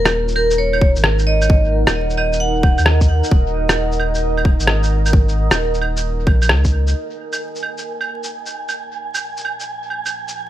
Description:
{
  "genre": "future garage",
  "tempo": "132 BPM",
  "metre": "4/4",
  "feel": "swing 67% on 16ths",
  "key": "Eb minor",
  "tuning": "A4 = 440 Hz",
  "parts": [
    { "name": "vibraphone with hard mallets", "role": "melody", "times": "0.0-2.8 s", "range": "Bb4 to Gb5", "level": "-21 LUFS", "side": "equal", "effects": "tape echo" },
    { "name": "deep dark ambient pad", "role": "sustained chords", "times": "0.0-10.5 s", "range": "Bb3 to Gb5", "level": "-24 LUFS", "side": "right 2 dB", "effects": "chorus, built-in reverb, vintage 12-bit sampler grit, sidechain pumping" },
    { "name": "warm sub bass", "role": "bass", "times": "0.0-6.9 s", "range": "Eb1 to Eb2", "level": "-18 LUFS", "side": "equal", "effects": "sidechain pumping" },
    { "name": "electronic rim click, shaker and claves", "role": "drums", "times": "0.1-10.3 s", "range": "none", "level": "-20 LUFS", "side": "right 1 dB", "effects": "studio reverb, tape echo" },
    { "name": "electronic kick drum", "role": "drums", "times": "0.8-6.7 s", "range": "none", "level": "-14 LUFS", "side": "equal", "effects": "studio reverb" },
    { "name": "wind-like tuned noise texture", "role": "texture", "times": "7.4-10.5 s", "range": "Ab5", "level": "-28 LUFS", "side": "right 4 dB", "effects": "built-in reverb" }
  ],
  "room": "little or no reverb",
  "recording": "echo-heavy mix, vinyl crackle",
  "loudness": "-15 LUFS",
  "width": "side -13 dB against mid",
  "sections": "0.0-6.9 A section; 6.9-10.5 B section",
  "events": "filter sweep on ambient pad 6.9-10.5",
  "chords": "0.0 Ebm7; 6.9 Bbm7",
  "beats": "0.13 0.59 1.04 | 1.50 1.95 2.40 2.86 | 3.31 3.77 4.22 4.68 | 5.13 5.59 6.04 6.50 | 6.95 7.40 7.86 8.31 | 8.77 9.22 9.68 10.13"
}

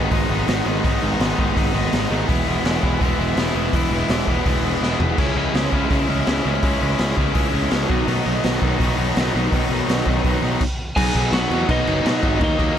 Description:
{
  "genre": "punk rock",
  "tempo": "166 BPM",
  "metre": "4/4",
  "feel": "straight",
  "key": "unclear",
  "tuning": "A4 = 440 Hz",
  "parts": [
    { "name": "crunchy overdriven guitar", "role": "riff", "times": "0.0-12.8 s", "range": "G#2 to E4", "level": "-21 LUFS", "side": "left 1 dB", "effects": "none" },
    { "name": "fuzz picked electric bass", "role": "bass", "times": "0.0-12.7 s", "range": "E1 to B2", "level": "-24 LUFS", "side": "equal", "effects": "overdrive" },
    { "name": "raw garage drum kit", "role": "drums", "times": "0.1-12.7 s", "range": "crash cymbal, hi-hat, kick drum, snare drum, toms", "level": "-22 LUFS", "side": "equal", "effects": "none" },
    { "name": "lightly driven lead guitar", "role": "melody", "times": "11.0-12.8 s", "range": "D#4 to G#5", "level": "-23 LUFS", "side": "right 1 dB", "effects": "none" }
  ],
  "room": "little or no reverb",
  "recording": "none",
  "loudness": "-17 LUFS",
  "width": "side -9 dB against mid",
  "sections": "0.0-11.0 A section; 11.0-12.8 B section",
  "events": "drum fill 4.8-5.2; stop 10.6-11.0",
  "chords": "0.0 G#m; 2.3 E; 5.2 C#m; 7.9 B",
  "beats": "0.12 0.48 | 0.84 1.20 1.56 1.93 | 2.29 2.65 3.01 3.37 | 3.73 4.10 4.46 4.82 | 5.18 5.54 5.91 6.27 | 6.63 6.99 7.35 7.71 | 8.08 8.44 8.80 9.16 | 9.53 9.89 10.25 10.61 | 10.97 11.33 11.70 12.06 | 12.42 12.78"
}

